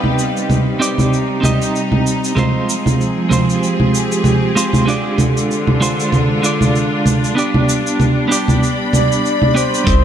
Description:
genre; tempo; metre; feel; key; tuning
organic downtempo; 96 BPM; 4/4; swing 56% on 16ths; unclear; A4 = 440 Hz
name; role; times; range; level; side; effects
clean electric guitar; accompaniment; 0.0-10.0 s; G3 to Eb5; -18 LUFS; right 2 dB; tremolo, sidechain pumping, tape echo
bright symphonic string section; sustained chords; 0.0-10.0 s; C3 to B5; -20 LUFS; left 1 dB; sidechain pumping
concert harp; arpeggios; 0.0-2.7, 9.9-10.0 s; B3 to G4; -29 LUFS; left 2 dB; tape echo
electronic congas, shaker and hi-hat; drums; 0.0-10.0 s; none; -16 LUFS; right 1 dB; none
breathy flute-like synth lead; melody; 8.9-10.0 s; C5 to D5; -20 LUFS; equal; wide subtle chorus, tape echo
round analog bass; bass; 9.9-10.0 s; C2; -13 LUFS; left 1 dB; none
electronic kick drum; drums; 9.9-10.0 s; none; -15 LUFS; left 1 dB; none
room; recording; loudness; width
moderate lush hall reverb, RT60 3.1 s; none; -13 LUFS; side -9 dB against mid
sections
0.0-9.9 A section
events
none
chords
0.0 Cm; 2.4 Fm; 4.9 Ddim; 7.4 G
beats
0.49 1.12 1.74 | 2.37 2.99 3.62 4.24 | 4.87 5.49 6.12 6.74 | 7.37 7.99 8.62 9.24 | 9.87

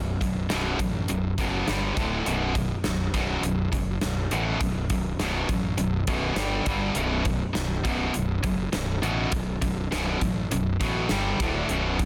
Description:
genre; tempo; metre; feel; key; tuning
hard rock; 102 BPM; 4/4; straight; B minor; A4 = 440 Hz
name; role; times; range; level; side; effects
distorted electric guitar; riff; 0.0-12.1 s; B1 to G3; -31 LUFS; equal; overdrive
tight distorted guitar; riff; 0.0-12.1 s; B1 to G3; -33 LUFS; equal; distortion
fuzz fingered electric bass; bass; 0.0-12.1 s; B0 to A1; -32 LUFS; equal; overdrive
gated 80s drum kit; drums; 0.2-12.1 s; hi-hat, kick drum, snare drum; -32 LUFS; equal; none
room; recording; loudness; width
small room ambience; dense, heavily limited modern master; -26 LUFS; mono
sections
0.0-12.1 A section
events
none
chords
0.0 B5; 1.7 G5; 2.0 D5; 2.3 B5; 6.4 G5; 7.0 B5; 11.1 G5; 11.4 D5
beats
0.51 1.10 1.68 | 2.27 2.86 3.44 4.03 | 4.62 5.20 5.79 6.38 | 6.97 7.56 8.15 8.74 | 9.33 9.92 10.52 11.11 | 11.70

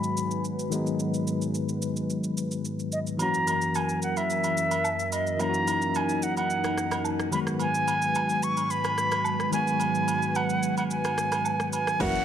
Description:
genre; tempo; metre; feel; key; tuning
amapiano; 109 BPM; 4/4; straight; G# minor; A4 = 442 Hz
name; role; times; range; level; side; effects
silver concert flute; melody; 0.0-12.2 s; D#5 to C#6; -27 LUFS; right 1 dB; low-pass filter, ping-pong delay
bell-like tine electric piano; accompaniment; 0.0-12.2 s; D#3 to F#4; -30 LUFS; left 4 dB; medium stereo tremolo, low-pass filter
warm analog pad; sustained chords; 0.0-12.2 s; F#2 to E5; -32 LUFS; right 2 dB; chorus, sidechain pumping, low-pass filter
deep house drum kit; drums; 0.0-12.2 s; crash cymbal, kick drum, rim click, shaker; -36 LUFS; right 1 dB; none
agogo bells and woodblock; percussion; 3.2-12.1 s; none; -36 LUFS; right 6 dB; none
marimba with hard mallets; stabs; 12.0-12.2 s; F#4 to E5; -32 LUFS; left 1 dB; none
tight log drum bass; bass; 12.0-12.2 s; F#1; -30 LUFS; equal; none
downlifter; sound effects; 12.0-12.2 s; none; -38 LUFS; right 2 dB; none
room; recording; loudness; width
light reverb; none; -24 LUFS; side -9 dB against mid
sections
0.0-12.0 A section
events
filter sweep 0.0-12.0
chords
0.0 G#m7; 3.2 F#7; 7.3 G#m7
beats
0.44 | 0.99 1.54 2.10 2.65 | 3.20 3.75 4.30 4.85 | 5.40 5.95 6.50 7.05 | 7.60 8.15 8.70 9.25 | 9.80 10.35 10.90 11.45 | 12.00

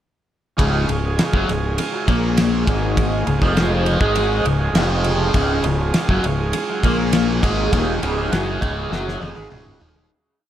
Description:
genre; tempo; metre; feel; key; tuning
psychedelic rock; 101 BPM; 4/4; straight; Db major; A4 = 441 Hz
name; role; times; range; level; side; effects
combo organ; sustained chords; 0.6-10.1 s; Ab3 to Ab4; -27 LUFS; right 4 dB; wide subtle chorus
biting overdriven guitar; riff; 0.6-10.1 s; Db2 to Bb3; -20 LUFS; left 1 dB; phaser, analog delay
fuzz fingered electric bass; bass; 0.6-10.1 s; Db1 to Bb1; -22 LUFS; equal; overdrive
damped 70s drum kit; drums; 0.6-10.1 s; kick drum, ride cymbal, snare drum, toms; -22 LUFS; equal; analog delay
room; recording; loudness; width
light reverb, small room ambience; echo-heavy mix; -16 LUFS; side -11 dB against mid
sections
0.6-10.1 riff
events
fade-out 7.7-10.1; drum fill 8.9-10.1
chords
0.6 Db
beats
| 0.59 1.19 1.78 2.38 | 2.97 3.57 4.16 4.76 | 5.35 5.95 6.54 7.13 | 7.73 8.32 8.92 9.52

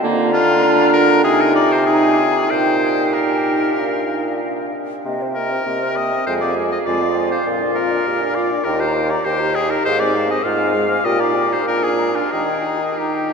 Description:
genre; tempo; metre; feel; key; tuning
quick classical-period movement for wind quintet; 90-102 BPM; 4/4; rubato; Eb major; A4 = 440 Hz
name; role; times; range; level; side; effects
hollow concert flute; melody; 0.0-13.3 s; C5 to Bb5; -25 LUFS; left 4 dB; none
bright clarinet; accompaniment; 0.0-13.3 s; Bb3 to Ab4; -24 LUFS; right 5 dB; none
mellow French horn; accompaniment; 0.0-13.3 s; Ab3 to G4; -24 LUFS; left 1 dB; none
warm bassoon; bass; 0.0-13.3 s; Eb2 to Eb3; -19 LUFS; right 1 dB; none
bright oboe; second line; 0.3-13.3 s; F4 to F5; -21 LUFS; left 3 dB; none
room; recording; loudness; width
wet cathedral reverb, RT60 7.0 s; none; -15 LUFS; side -5 dB against mid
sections
0.0-13.3 A section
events
none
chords
0.0 Bb/D; 1.2 Ab/C; 2.5 Eb/Bb; 3.8 Bb; 5.0 Cm7; 6.3 Fm; 7.5 Bb; 8.7 Eb; 9.8 Fm/Ab; 11.1 Eb/Bb; 11.7 Bb7; 12.3 Eb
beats
| 0.03 0.63 1.24 1.86 | 2.50 3.14 3.78 4.41 | 5.04 5.66 6.27 6.87 | 7.47 8.07 8.66 9.25 | 9.85 10.44 11.05 11.68 | 12.32 12.98

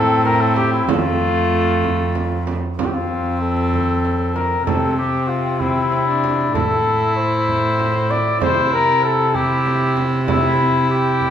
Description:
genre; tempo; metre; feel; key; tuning
classical, renaissance-style consort dance; 64 BPM (dotted quarters); 6/8; straight; unclear; A4 = 441 Hz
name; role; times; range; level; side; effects
warm cornet; melody; 0.0-11.3 s; E4 to D5; -19 LUFS; left 3 dB; none
rich viola; accompaniment; 0.0-11.3 s; A3 to E4; -22 LUFS; left 1 dB; none
rich cello; bass; 0.0-11.3 s; F2 to C3; -21 LUFS; right 2 dB; none
frame drum; percussion; 0.3-11.3 s; none; -26 LUFS; right 5 dB; none
room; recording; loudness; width
wet recital hall reverb, RT60 1.7 s; minimal, uncompressed stereo recording; -16 LUFS; side -9 dB against mid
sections
0.0-2.8 A section; 2.8-11.3 B section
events
none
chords
0.0 Am; 0.9 F; 4.7 C; 6.5 Am; 8.4 C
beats
| 0.88 1.84 | 2.79 3.73 | 4.67 5.61 | 6.55 7.48 | 8.41 9.34 | 10.27 11.21

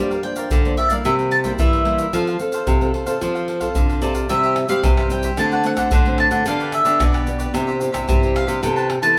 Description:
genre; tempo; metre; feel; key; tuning
samba and choro; 111 BPM; 4/4; straight; F major, C major from 4.3 s; A4 = 440 Hz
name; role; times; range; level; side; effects
mandolin; melody; 0.0-9.2 s; D5 to A5; -24 LUFS; equal; none
cavaquinho; accompaniment; 0.0-9.2 s; D4 to A5; -30 LUFS; equal; none
nylon-string guitar; accompaniment; 0.0-9.2 s; G2 to A4; -28 LUFS; equal; none
nylon-string guitar; bass; 0.0-9.1 s; B2 to G3; -24 LUFS; equal; none
egg shaker, pandeiro, surdo and tamborim; percussion; 0.1-9.2 s; none; -24 LUFS; equal; none
room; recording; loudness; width
moderate large studio reverb, RT60 0.9 s; band playing live in one room; -19 LUFS; mono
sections
0.0-4.3 A section; 4.3-9.2 B section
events
none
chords
0.0 Gm7; 1.1 C7; 2.1 F; 4.3 C; 5.4 D7; 6.5 G/D; 7.5 C; 8.6 Amadd9/C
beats
0.51 1.05 1.59 | 2.13 2.67 3.21 3.75 | 4.29 4.83 5.38 5.92 | 6.46 7.00 7.54 8.09 | 8.63 9.17

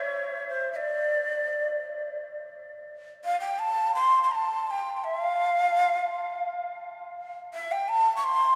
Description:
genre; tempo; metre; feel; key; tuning
andean folk; 84 BPM; 3/4; straight; unclear; A4 = 444 Hz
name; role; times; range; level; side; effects
breathy large quena; solo; 0.0-8.6 s; C5 to C#6; -28 LUFS; equal; none
room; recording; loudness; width
wet cathedral reverb, RT60 6.0 s; recorded in a church or concert hall, small room ambience; -27 LUFS; mono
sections
0.0-2.9 A section; 2.9-8.6 B section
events
none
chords
none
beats
| 0.72 1.44 2.16 | 2.88 3.60 4.32 | 5.03 5.75 6.46 | 7.17 7.88

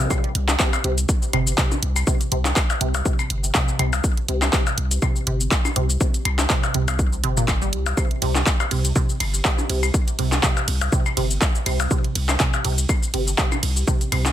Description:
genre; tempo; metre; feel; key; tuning
minimal techno; 122 BPM; 4/4; swing 55% on 16ths; unclear; A4 = 440 Hz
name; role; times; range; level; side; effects
punchy sub bass; bass; 0.0-14.3 s; G1 to C2; -23 LUFS; equal; sidechain pumping
resonant blip pluck; riff; 0.1-14.2 s; Bb2 to G3; -27 LUFS; right 2 dB; phaser, sidechain pumping, dub echo
electronic kick drum; drums; 0.1-14.0 s; none; -21 LUFS; equal; overdrive
house drum kit; drums; 0.1-14.3 s; handclaps, hi-hat, ride cymbal, shaker; -24 LUFS; equal; overdrive
percussion blips; percussion; 0.1-14.3 s; none; -28 LUFS; left 6 dB; tape echo
room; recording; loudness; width
light reverb; dense, heavily limited modern master; -18 LUFS; side -11 dB against mid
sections
0.0-14.3 A section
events
none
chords
0.0 C5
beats
| 0.10 0.60 1.09 1.58 | 2.07 2.56 3.06 3.55 | 4.04 4.53 5.02 5.51 | 6.01 6.50 6.99 7.48 | 7.97 8.47 8.96 9.45 | 9.94 10.43 10.93 11.42 | 11.91 12.40 12.89 13.38 | 13.88

